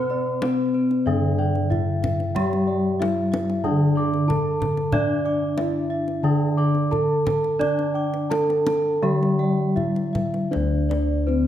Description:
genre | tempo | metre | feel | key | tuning
Javanese gamelan | 79-93 BPM | 4/4 | straight | D slendro | A4 = 440 Hz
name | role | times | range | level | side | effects
gamelan-type bronze metallophone | melody | 0.0-11.5 s | C4-45c to D5 | -24 LUFS | right 1 dB | none
gamelan-type bronze metallophone | accompaniment | 0.0-10.5 s | D3 to D4 | -26 LUFS | equal | none
gamelan-type bossed gongs | arpeggios | 0.0-11.5 s | C5-45c to D6 | -32 LUFS | left 4 dB | none
gamelan-type bronze metallophone | arpeggios | 0.0-11.5 s | C5-45c to D6 | -32 LUFS | right 3 dB | none
gamelan-type bossed gongs | bass | 0.0-11.5 s | D2 to D5 | -25 LUFS | left 2 dB | none
kendang | percussion | 0.4-11.1 s | none | -30 LUFS | left 1 dB | none
room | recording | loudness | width
moderate recital hall reverb, RT60 1.5 s | none | -20 LUFS | side -11 dB against mid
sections
0.0-10.5 A section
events
none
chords
none

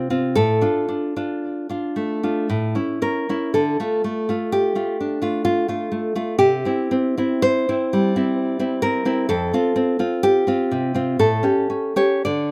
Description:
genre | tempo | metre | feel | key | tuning
romantic piece for solo classical guitar | 52-68 BPM | 3/4 | rubato | D minor | A4 = 440 Hz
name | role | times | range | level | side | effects
nylon-string guitar | solo | 0.0-12.5 s | F2 to D5 | -21 LUFS | equal | slapback echo
room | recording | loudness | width
little or no reverb | recorded outdoors, with no room sound | -21 LUFS | mono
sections
0.0-12.5 A section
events
none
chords
0.4 Dm/A; 2.5 A; 3.5 Dm; 6.4 C; 9.3 F; 11.2 A7

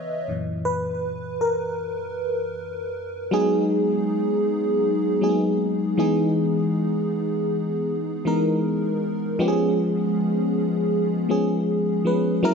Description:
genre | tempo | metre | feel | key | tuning
R&B | 79 BPM | 4/4 | swing 58% on 16ths | G# minor | A4 = 440 Hz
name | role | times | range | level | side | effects
FM electric piano with soft pad layer | solo | 0.0-12.5 s | F#2 to E5 | -21 LUFS | equal | chorus, digital delay
room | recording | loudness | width
light reverb | dark, warm production | -21 LUFS | side -5 dB against mid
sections
0.0-3.3 A section; 3.3-12.5 B section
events
FM electric piano solo 0.0-3.3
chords
0.3 F#7; 3.3 G#m7; 6.0 Emaj7; 9.4 C#7

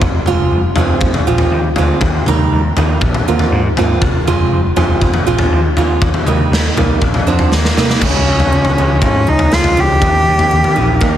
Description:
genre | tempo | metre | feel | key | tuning
quiet-loud alternative rock | 120 BPM | 4/4 | straight | F dorian | A4 = 440 Hz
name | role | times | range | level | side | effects
picked acoustic archtop guitar | arpeggios | 0.0-11.2 s | Db3 to F4 | -18 LUFS | right 5 dB | none
overdriven picked electric bass | bass | 0.0-11.2 s | F1 to C3 | -17 LUFS | equal | none
raw garage drum kit | drums | 0.0-11.1 s | crash cymbal, kick drum, snare drum, toms | -14 LUFS | left 1 dB | none
rich cello | melody | 7.5-11.2 s | Bb3 to G4 | -14 LUFS | equal | analog delay
room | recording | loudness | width
light reverb | heavily compressed radio sound, multiband compression | -11 LUFS | side -11 dB against mid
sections
0.0-8.0 A section; 8.0-11.2 B section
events
drum fill 7.5-8.0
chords
0.0 Fm; 2.0 Eb; 3.0 Bbadd9; 4.0 Fm; 6.0 Eb; 7.0 Bbadd9; 7.5 Eb; 8.0 Db; 10.0 Eb

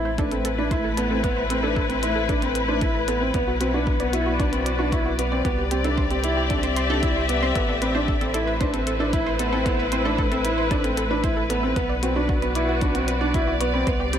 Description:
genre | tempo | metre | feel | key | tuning
piano and strings electronica | 114 BPM | 4/4 | straight | A dorian | A4 = 439 Hz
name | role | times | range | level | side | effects
dark studio string section | sustained chords | 0.0-14.2 s | A3 to E5 | -25 LUFS | left 3 dB | sidechain pumping
dark concert grand piano | riff | 0.0-14.2 s | B3 to E4 | -25 LUFS | right 2 dB | ping-pong delay
warm sub bass | bass | 0.0-14.2 s | A1 to C2 | -28 LUFS | equal | tube saturation, sidechain pumping
analog pluck | arpeggios | 0.1-14.2 s | F#4 to C6 | -32 LUFS | right 2 dB | chorus, sidechain pumping, ping-pong delay
electronic hi-hat | drums | 0.2-14.2 s | none | -34 LUFS | left 3 dB | none
electronic kick drum | drums | 0.2-14.0 s | none | -26 LUFS | equal | overdrive
room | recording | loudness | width
light reverb | none | -20 LUFS | side -9 dB against mid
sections
0.0-14.2 A section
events
none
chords
0.0 Amadd9; 3.3 Bm; 5.4 C; 7.6 Amadd9; 11.8 Bm

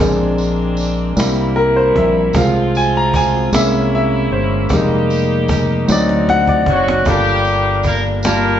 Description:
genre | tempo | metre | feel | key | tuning
slow gospel | 51 BPM (dotted quarters) | 6/8 | straight | F minor | A4 = 440 Hz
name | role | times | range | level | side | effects
clear baby grand piano | accompaniment | 0.0-8.6 s | G2 to Bb5 | -16 LUFS | left 1 dB | none
mellow tonewheel organ | sustained chords | 0.0-8.6 s | G3 to A5 | -23 LUFS | right 2 dB | fast rotary speaker
muted French horn section | sustained chords | 0.0-7.0 s | D3 to G4 | -26 LUFS | equal | none
fingered electric bass | bass | 0.0-8.6 s | F1 to D2 | -18 LUFS | equal | none
cajon | drums | 0.4-8.4 s | none | -22 LUFS | right 1 dB | none
tambourine | percussion | 0.4-8.6 s | none | -30 LUFS | right 2 dB | none
clear horn section | melody | 6.7-8.6 s | F#3 to Bb4 | -16 LUFS | left 1 dB | none
room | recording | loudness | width
wet large studio reverb, RT60 1.2 s | band playing live in one room, nothing above 7.8 kHz | -13 LUFS | side -10 dB against mid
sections
0.0-7.1 A section; 7.1-8.6 B section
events
grand piano solo 0.0-7.1; drum fill 5.9-7.1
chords
0.0 Bb9; 1.2 C7; 2.3 Fm/C; 3.5 C7b9b13; 4.7 Fm11; 5.9 D7b9; 7.1 Gm9

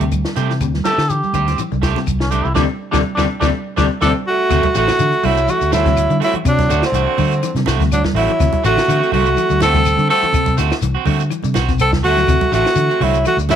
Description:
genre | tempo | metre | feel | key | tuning
afrobeat | 123 BPM | 4/4 | swing 54% on 16ths | D mixolydian | A4 = 440 Hz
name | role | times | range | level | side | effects
semi-hollow electric guitar | arpeggios | 0.0-13.6 s | C3 to G3 | -25 LUFS | left 11 dB | none
electric guitar at the edge of break-up | stabs | 0.0-13.6 s | A3 to G4 | -24 LUFS | right 11 dB | warbly pitch drift
fingered electric bass | bass | 0.0-13.6 s | A1 to D3 | -19 LUFS | left 1 dB | none
compact cocktail drum kit | drums | 0.0-13.6 s | hi-hat, kick drum, snare drum | -22 LUFS | left 1 dB | none
congas | percussion | 0.0-13.6 s | none | -25 LUFS | right 9 dB | none
shekere | percussion | 0.0-13.6 s | none | -29 LUFS | left 8 dB | none
claves | percussion | 0.1-13.4 s | none | -35 LUFS | left 18 dB | none
trombone with metal mute | melody | 0.8-4.1 s | C#4 to A4 | -21 LUFS | equal | none
breathy tenor saxophone | melody | 4.0-13.6 s | C4 to A4 | -16 LUFS | left 1 dB | none
raspy tenor saxophone | second line | 4.1-13.6 s | D3 to C4 | -23 LUFS | right 11 dB | none
room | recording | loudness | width
light reverb, studio reverb | 1960s-style stereo with parts hard left and right | -13 LUFS | side -9 dB against mid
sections
0.0-4.5 A section; 4.5-13.6 B section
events
trombone solo 0.0-4.5; band accent 2.6-4.5; drum fill 4.3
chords
0.0 D7sus4; 4.5 D7

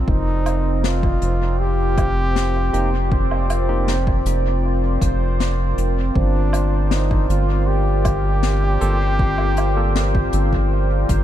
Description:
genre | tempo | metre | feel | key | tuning
ambient dub | 79 BPM | 4/4 | straight | unclear | A4 = 440 Hz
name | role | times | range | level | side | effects
deep dark ambient pad | sustained chords | 0.0-11.2 s | C4 to D5 | -25 LUFS | left 1 dB | chorus, built-in reverb
round analog bass | bass | 0.0-11.2 s | F1 to G1 | -19 LUFS | equal | none
warm trombone | melody | 0.1-11.2 s | C4 to G4 | -25 LUFS | left 1 dB | dub echo
electronic kick drum | drums | 0.1-11.2 s | none | -21 LUFS | equal | none
bubbling stepped-filter texture | texture | 0.1-11.2 s | C5 | -31 LUFS | right 7 dB | chorus, built-in reverb
soft brush drum kit | drums | 0.5-11.2 s | hi-hat, snare drum, woodblock | -29 LUFS | left 4 dB | dub echo
barky tine electric piano | stabs | 2.7-3.9, 8.8-10.0 s | Bb3 to A4 | -33 LUFS | right 2 dB | none
room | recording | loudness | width
small room reverb | dark, warm production | -16 LUFS | side -12 dB against mid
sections
0.0-11.2 A section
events
none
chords
0.1 Fsus4; 6.2 Gm7

